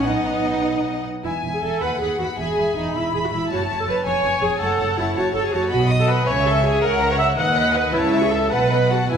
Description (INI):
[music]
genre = quick classical-period movement for string orchestra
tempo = 107 BPM (dotted quarters)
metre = 6/8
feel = rubato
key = unclear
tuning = A4 = 442 Hz
[part]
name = warm studio violin section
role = melody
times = 0.0-9.2 s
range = C#5 to B5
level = -27 LUFS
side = left 6 dB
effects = none
[part]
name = warm studio violin section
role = second line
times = 0.0-9.2 s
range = B4 to D#6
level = -26 LUFS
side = equal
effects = none
[part]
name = rich studio viola section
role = accompaniment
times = 0.0-9.2 s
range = B3 to F#5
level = -21 LUFS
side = right 1 dB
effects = none
[part]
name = rich studio double bass section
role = bass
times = 0.0-9.2 s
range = E1 to D#2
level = -28 LUFS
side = right 1 dB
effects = none
[part]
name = warm studio cello section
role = bass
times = 0.0-9.2 s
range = D#2 to D#4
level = -25 LUFS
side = right 2 dB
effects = none
[sound]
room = wet recital hall reverb, RT60 1.5 s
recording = recorded in a church or concert hall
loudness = -18 LUFS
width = side -7 dB against mid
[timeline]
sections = 0.0-1.2 A section; 1.2-9.2 B section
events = none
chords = 0.0 B; 1.2 E; 1.8 B; 2.4 E; 3.5 F#m; 4.1 C#; 4.6 F#m; 5.7 B; 6.3 C#m; 6.8 F#7/C#; 7.4 B/D#; 7.9 A/C#; 8.5 B7